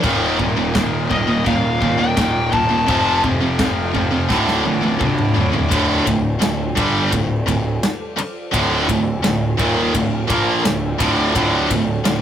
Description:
heavy metal; 85 BPM; 4/4; straight; D phrygian; A4 = 439 Hz
phased analog pad; sustained chords; 0.7-12.2 s; D3 to D5; -31 LUFS; equal
heavy high-gain guitar; riff; 0.0-12.2 s; D2 to Bb3; -24 LUFS; left 4 dB; distortion
high-gain distorted guitar; riff; 0.0-12.2 s; D2 to Bb3; -20 LUFS; right 3 dB; distortion
tight distorted guitar; riff; 0.0-12.2 s; D2 to Bb3; -23 LUFS; left 1 dB; distortion
fuzz picked electric bass; bass; 0.0-12.2 s; D1 to Bb1; -25 LUFS; left 1 dB; overdrive
modern studio drum kit; drums; 0.0-12.2 s; china cymbal, kick drum, ride cymbal, snare drum, toms; -22 LUFS; equal
high-gain lead guitar; melody; 1.1-3.2 s; Eb5 to A5; -19 LUFS; left 3 dB; distortion
wet booth ambience, RT60 0.2 s; rough rehearsal-room recording, warm saturation; -15 LUFS; side -9 dB against mid
0.0-5.7 A section; 5.7-12.2 B section
drum fill 4.3-5.7
0.0 Eb; 2.9 F; 4.3 Dm
| 0.04 0.75 1.46 2.17 | 2.88 3.58 4.29 5.00 | 5.71 6.41 7.12 7.82 | 8.53 9.23 9.94 10.64 | 11.34 12.05

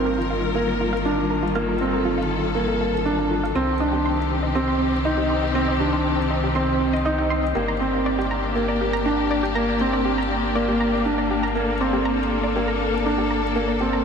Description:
electronica; 120 BPM; 4/4; straight; G minor; A4 = 441 Hz
warm studio string section; sustained chords; 0.0-14.0 s; C3 to Bb4; -24 LUFS; left 2 dB
warm concert grand piano; riff; 0.0-14.0 s; Bb3 to Eb4; -23 LUFS; right 2 dB; ping-pong delay
warm sub bass; bass; 0.0-14.0 s; G1 to C2; -28 LUFS; equal
analog pluck; arpeggios; 0.1-14.0 s; F4 to C6; -29 LUFS; equal; chorus, cassette tape, ping-pong delay
wet cathedral reverb, RT60 5.1 s; dreamy mix soaked in reverb; -20 LUFS; side -6 dB against mid
0.0-14.0 A section
0.0 Ebadd9/G; 3.6 Cm; 7.6 Gm
0.06 0.56 1.06 | 1.56 2.06 2.56 3.06 | 3.56 4.06 4.56 5.06 | 5.56 6.06 6.56 7.06 | 7.56 8.06 8.56 9.06 | 9.56 10.06 10.56 11.06 | 11.56 12.06 12.56 13.06 | 13.56

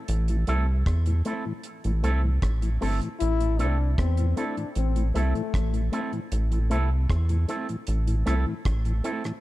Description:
roots reggae; 77 BPM; 4/4; straight; A minor; A4 = 440 Hz
rubbery square bass; bass; 0.1-9.0 s; G1 to E2; -23 LUFS; equal
deep reggae drum kit; drums; 0.1-9.4 s; hi-hat, kick drum, rim click; -30 LUFS; equal
mellow tonewheel organ; accompaniment; 0.3-9.3 s; A2 to E4; -34 LUFS; left 2 dB; chorus vibrato, slow rotary speaker
electric guitar with an envelope filter; accompaniment; 0.5-9.2 s; A3 to A4; -33 LUFS; right 3 dB; dub echo
mellow trombone; second line; 3.2-5.9 s; A3 to E4; -32 LUFS; left 9 dB; dub echo
studio reverb; dark, warm production; -23 LUFS; side -17 dB against mid
0.0-9.4 A section
0.0 Am
| 0.08 0.86 1.64 2.42 | 3.20 3.98 4.76 5.54 | 6.32 7.10 7.88 8.66

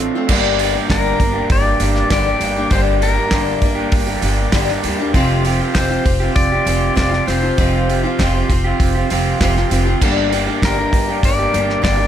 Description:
folk rock and heartland rock; 99 BPM; 4/4; straight; G minor; A4 = 440 Hz
picked steel-string acoustic guitar; accompaniment; 0.0-12.1 s; F2 to G4; -21 LUFS; left 4 dB
accordion; sustained chords; 0.0-12.1 s; G4 to D6; -30 LUFS; right 5 dB; light tremolo tuning
electric guitar through a small old amp; riff; 0.0-12.1 s; G2 to G4; -21 LUFS; right 3 dB
upright bass; bass; 0.0-12.1 s; F1 to Eb2; -20 LUFS; equal
damped 70s drum kit; drums; 0.3-12.0 s; crash cymbal, hi-hat, kick drum, snare drum; -19 LUFS; right 1 dB
pedal steel guitar; melody; 0.9-12.1 s; Bb4 to D5; -21 LUFS; left 2 dB
little or no reverb; -14 LUFS; side -10 dB against mid
0.3-12.1 A section
0.3 Gm; 5.1 Fsus2; 10.0 Gm
| 0.29 0.90 1.50 2.11 | 2.72 3.33 3.93 4.54 | 5.15 5.75 6.36 6.97 | 7.58 8.19 8.79 9.40 | 10.01 10.62 11.22 11.83

